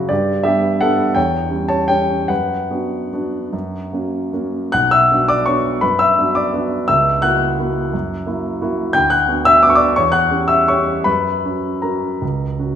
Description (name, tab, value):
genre	classical, piano waltz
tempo	142-183 BPM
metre	3/4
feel	rubato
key	B minor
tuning	A4 = 442 Hz
part	warm grand piano	solo	0.0-12.8 s	B1 to G6	-14 LUFS	equal	none
room	wet recital hall reverb, RT60 1.7 s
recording	minimal, uncompressed stereo recording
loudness	-14 LUFS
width	side -9 dB against mid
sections	0.0-4.7 A section; 4.7-12.8 B section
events	none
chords	0.1 G; 1.2 C#dim/E; 2.3 Bm/F#; 3.5 F#; 4.7 Bm; 6.9 F#7/C#; 8.9 Bm/D; 10.0 C#dim/E; 11.1 F#